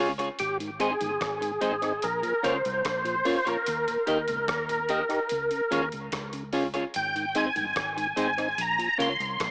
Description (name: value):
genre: roots reggae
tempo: 73 BPM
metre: 4/4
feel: straight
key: Ab major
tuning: A4 = 440 Hz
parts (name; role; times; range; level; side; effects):
- clean electric guitar; accompaniment; 0.0-9.1 s; C4 to Eb5; -34 LUFS; equal; lush chorus, cassette tape, dub echo
- mellow tonewheel organ; accompaniment; 0.0-9.1 s; Eb2 to G4; -34 LUFS; equal; stopped rotary speaker, cassette tape
- vintage muted fingered electric bass; bass; 0.0-9.5 s; G1 to Eb2; -43 LUFS; equal; none
- dusty soul sampler-style drum kit; drums; 0.2-9.5 s; hi-hat, kick drum, rim click; -39 LUFS; equal; cassette tape, analog delay
- percussive tonewheel organ; melody; 0.4-9.5 s; G4 to C6; -30 LUFS; equal; overdrive, chorus vibrato, slow rotary speaker, cassette tape, dub echo
room: light reverb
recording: home recording on cassette, small speaker sound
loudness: -28 LUFS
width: mono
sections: 0.0-6.9 A section; 6.9-9.5 A section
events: none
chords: 0.4 Ab; 2.0 Bbm; 3.7 Eb; 5.3 Db; 6.9 Ab; 8.6 Bbm